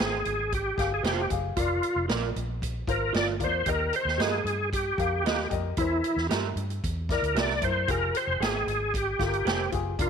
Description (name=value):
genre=uptempo 1960s-style soul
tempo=114 BPM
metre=4/4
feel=straight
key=unclear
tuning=A4 = 440 Hz
part: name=bright tonewheel organ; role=melody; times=0.0-10.1 s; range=E4 to D5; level=-28 LUFS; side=equal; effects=chorus vibrato, fast rotary speaker
part: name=dark baby grand piano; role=accompaniment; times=0.0-10.1 s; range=Eb3 to F5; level=-34 LUFS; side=left 12 dB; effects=none
part: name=electric guitar through a small old amp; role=stabs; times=0.0-9.6 s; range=F4 to G5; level=-33 LUFS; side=right 12 dB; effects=analog chorus
part: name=vintage muted fingered electric bass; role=bass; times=0.0-10.1 s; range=F1 to G2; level=-32 LUFS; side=equal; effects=none
part: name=swinging big-band drum kit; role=drums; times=0.0-10.1 s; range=hi-hat, kick drum, snare drum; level=-32 LUFS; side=right 1 dB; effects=none
room=light reverb, studio reverb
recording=1960s-style stereo with parts hard left and right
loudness=-25 LUFS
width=side -7 dB against mid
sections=0.0-10.1 A section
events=none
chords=0.0 Fmadd9; 1.6 Bb/F; 3.7 Eb; 5.8 C7/E; 7.9 Fmadd9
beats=0.52 1.04 | 1.57 2.09 2.62 3.15 | 3.67 4.20 4.72 5.25 | 5.78 6.30 6.83 7.36 | 7.88 8.41 8.94 9.47 | 9.99